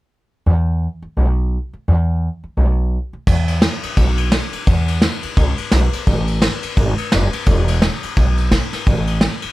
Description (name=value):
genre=rockabilly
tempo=172 BPM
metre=4/4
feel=swing 60% on 8ths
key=E major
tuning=A4 = 439 Hz
part: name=upright bass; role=bass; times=0.5-9.5 s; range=E1 to E2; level=-16 LUFS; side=equal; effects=none
part: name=vintage brush drum kit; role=drums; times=3.3-9.5 s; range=crash cymbal, kick drum, ride cymbal, snare drum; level=-17 LUFS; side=equal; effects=none
room=little or no reverb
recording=none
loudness=-15 LUFS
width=side -18 dB against mid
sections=0.5-3.3 A section; 3.3-9.5 B section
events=none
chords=none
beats=| 0.47 0.82 1.17 1.52 | 1.87 2.22 2.57 2.92 | 3.27 3.62 3.97 4.32 | 4.67 5.02 5.37 5.72 | 6.07 6.42 6.77 7.12 | 7.47 7.82 8.17 8.51 | 8.86 9.21